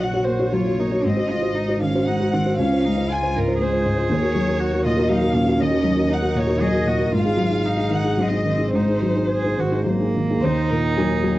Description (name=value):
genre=neoclassical piano and strings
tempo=100-121 BPM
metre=3/4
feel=rubato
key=Eb dorian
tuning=A4 = 440 Hz
part: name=warm chamber violin section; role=melody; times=0.0-11.4 s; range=Ab4 to Ab5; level=-26 LUFS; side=left 1 dB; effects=none
part: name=warm cello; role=second line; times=0.0-11.4 s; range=Bb3 to Ab4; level=-26 LUFS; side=right 3 dB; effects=none
part: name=felt-muted upright piano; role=accompaniment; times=0.0-11.4 s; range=Db2 to Db5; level=-21 LUFS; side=equal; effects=none
part: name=warm double bass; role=bass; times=0.0-11.4 s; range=Ab1 to Eb2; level=-26 LUFS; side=equal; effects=none
room=moderate studio reverb, RT60 0.7 s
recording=home recording on cassette, nothing above 8.0 kHz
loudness=-18 LUFS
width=side -16 dB against mid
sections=0.0-10.4 A section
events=none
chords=0.0 Ebm7/Bb; 1.0 Ab7; 2.6 Dbmaj7; 4.1 Ebm7; 7.1 Ab7; 10.4 Ebm